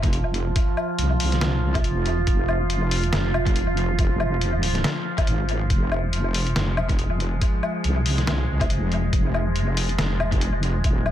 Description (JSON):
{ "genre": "deep dubstep", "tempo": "140 BPM", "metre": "4/4", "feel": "swing 57% on 16ths, half-time", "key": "F minor", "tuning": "A4 = 440 Hz", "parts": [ { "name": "overtone-sweeping drone", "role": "sustained chords", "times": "0.0-11.1 s", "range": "F3 to F4", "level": "-27 LUFS", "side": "right 1 dB", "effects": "chorus, built-in reverb" }, { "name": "wobble bass", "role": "bass", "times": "0.0-11.1 s", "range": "Eb1 to C2", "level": "-23 LUFS", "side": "equal", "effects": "chorus" }, { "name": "electronic kick drum", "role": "drums", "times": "0.0-10.9 s", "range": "none", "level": "-22 LUFS", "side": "equal", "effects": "none" }, { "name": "trip hop sampler-style drum kit", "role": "drums", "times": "0.0-11.1 s", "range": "hi-hat, snare drum, woodblock", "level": "-28 LUFS", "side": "left 2 dB", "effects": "dub echo" } ], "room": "light reverb, digital ambience", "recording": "echo-heavy mix", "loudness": "-20 LUFS", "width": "side -11 dB against mid", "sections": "0.0-11.1 A section", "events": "none", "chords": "0.0 Fm" }